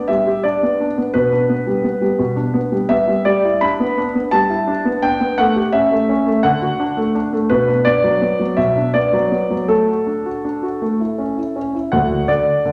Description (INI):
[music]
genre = classical-period piano sonatina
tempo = 56 BPM (dotted quarters)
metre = 6/8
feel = straight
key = G major, D major from 3.3 s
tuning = A4 = 440 Hz
[part]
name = warm concert grand piano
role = solo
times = 0.0-12.7 s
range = D2 to B5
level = -17 LUFS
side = equal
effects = none
[sound]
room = wet recital hall reverb, RT60 1.3 s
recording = none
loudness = -17 LUFS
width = mono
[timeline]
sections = 0.0-11.9 A section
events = none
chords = 0.0 G; 1.1 G/B; 3.3 Em7/G; 5.4 A7; 6.4 D; 7.5 Bm; 9.7 D/A; 10.8 A; 11.9 D